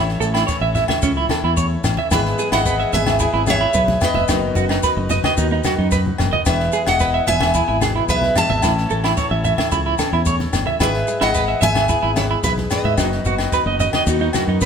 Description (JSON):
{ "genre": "highlife guitar band", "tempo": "110 BPM", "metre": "4/4", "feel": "straight", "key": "E major", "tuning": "A4 = 443 Hz", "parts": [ { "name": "picked steel-string acoustic guitar", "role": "melody", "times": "0.0-14.7 s", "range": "B4 to A5", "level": "-21 LUFS", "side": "equal", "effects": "none" }, { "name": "nylon-string guitar", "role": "accompaniment", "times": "0.0-14.7 s", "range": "E2 to G#4", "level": "-27 LUFS", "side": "left 4 dB", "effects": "none" }, { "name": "accordion", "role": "sustained chords", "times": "0.0-14.7 s", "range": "D#4 to C#5", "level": "-33 LUFS", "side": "left 3 dB", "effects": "none" }, { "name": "fingered electric bass", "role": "bass", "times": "0.0-14.7 s", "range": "E1 to G#2", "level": "-22 LUFS", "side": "equal", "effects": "none" }, { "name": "compact cocktail drum kit", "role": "drums", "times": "0.1-14.7 s", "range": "kick drum, snare drum", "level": "-25 LUFS", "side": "equal", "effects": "none" }, { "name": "electric guitar at the edge of break-up", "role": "arpeggios", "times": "0.2-14.7 s", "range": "C#4 to E5", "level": "-21 LUFS", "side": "right 6 dB", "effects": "tremolo" }, { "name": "maracas", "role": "percussion", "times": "0.2-14.7 s", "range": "none", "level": "-32 LUFS", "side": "left 5 dB", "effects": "none" }, { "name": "agogo bells", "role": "percussion", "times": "0.3-14.5 s", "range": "none", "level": "-28 LUFS", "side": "left 9 dB", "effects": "none" }, { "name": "congas", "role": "percussion", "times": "0.7-14.7 s", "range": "none", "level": "-26 LUFS", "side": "left 1 dB", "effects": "none" } ], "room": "moderate stone room reverb, RT60 1.3 s", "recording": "band playing live in one room", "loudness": "-15 LUFS", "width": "side -7 dB against mid", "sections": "0.0-14.7 A section", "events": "none", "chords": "0.0 A; 2.1 E/G#; 4.3 B/F#; 6.5 E; 8.6 A; 10.8 E/G#; 13.0 B/F#" }